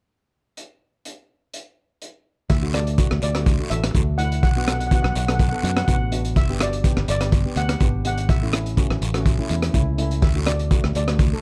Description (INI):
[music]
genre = calypso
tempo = 124 BPM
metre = 4/4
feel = straight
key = D major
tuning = A4 = 440 Hz
[part]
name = crunchy breakbeat drum kit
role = drums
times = 0.6-11.3 s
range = hi-hat, kick drum, rim click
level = -24 LUFS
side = equal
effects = none
[part]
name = steel pan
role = melody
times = 2.5-11.4 s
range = D5 to F#5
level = -31 LUFS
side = equal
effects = none
[part]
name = fingered electric bass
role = bass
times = 2.5-11.3 s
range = G1 to F#2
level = -26 LUFS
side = equal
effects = none
[part]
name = guiro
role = percussion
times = 2.5-11.4 s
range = none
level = -37 LUFS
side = equal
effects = none
[part]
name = steel pan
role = accompaniment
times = 2.6-11.4 s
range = A3 to A4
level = -32 LUFS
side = equal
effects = none
[sound]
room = little or no reverb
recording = dark, warm production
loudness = -21 LUFS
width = mono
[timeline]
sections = 0.6-2.5 A section; 2.5-11.4 B section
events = none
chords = 0.6 N.C.; 2.5 Dadd9; 4.4 Bm7; 6.4 Gmaj7; 8.3 A; 10.2 D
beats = | 0.57 1.05 1.53 2.02 | 2.50 2.98 3.46 3.94 | 4.43 4.91 5.39 5.88 | 6.36 6.84 7.33 7.81 | 8.29 8.78 9.26 9.74 | 10.23 10.71 11.19